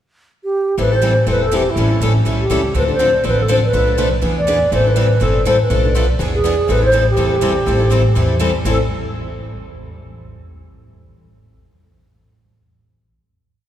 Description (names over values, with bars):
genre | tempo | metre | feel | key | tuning
acoustic string swing (jazz manouche) | 244 BPM | 4/4 | swing 56% on 8ths | A minor | A4 = 438 Hz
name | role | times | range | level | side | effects
alto flute | melody | 0.4-8.8 s | E4 to D5 | -18 LUFS | right 1 dB | none
picked steel-string acoustic guitar | accompaniment | 0.8-8.8 s | A2 to A4 | -20 LUFS | left 5 dB | none
picked steel-string acoustic guitar | accompaniment | 0.8-8.8 s | A2 to B4 | -25 LUFS | right 5 dB | none
upright bass | bass | 0.8-8.8 s | E1 to E2 | -18 LUFS | equal | none
room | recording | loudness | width
wet church reverb, RT60 3.8 s | recorded in a church or concert hall | -13 LUFS | side -11 dB against mid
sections
0.0-0.8 pickup bar; 0.8-8.7 A section; 8.7-9.6 final chord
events
none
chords
0.0 N.C.; 0.8 Am7; 1.8 A7; 2.7 Dm7; 3.7 Bm7b5; 4.2 E7; 4.7 Am7; 5.7 Bm7b5; 6.2 E7; 6.7 Am7